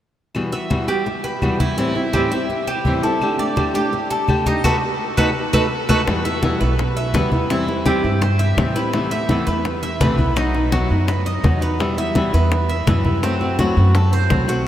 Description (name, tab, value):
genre	latin, Cuban son and guajira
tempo	168 BPM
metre	4/4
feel	straight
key	E minor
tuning	A4 = 440 Hz
part	flamenco guitar	accompaniment	0.3-14.7 s	E2 to G4	-21 LUFS	left 1 dB	none
part	claves	percussion	0.3-6.0 s	none	-32 LUFS	left 2 dB	none
part	congas	percussion	0.3-14.7 s	none	-24 LUFS	equal	none
part	Cuban tres	arpeggios	0.5-14.7 s	C4 to E5	-22 LUFS	right 2 dB	none
part	upright bass	bass	6.1-14.7 s	B1 to A2	-20 LUFS	equal	none
part	bongos	percussion	6.1-14.7 s	none	-27 LUFS	left 3 dB	none
room	wet huge ambient reverb, RT60 7.3 s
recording	in a vast, echoing space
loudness	-16 LUFS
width	side -12 dB against mid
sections	0.3-6.1 A section; 6.1-14.7 B section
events	band accent 4.6-6.1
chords	0.3 Emadd9; 1.8 Am7; 3.2 Dsus4; 4.6 B7; 6.1 Em; 7.5 C/E; 8.9 Amadd9; 10.4 B; 11.8 Em; 13.2 F#dim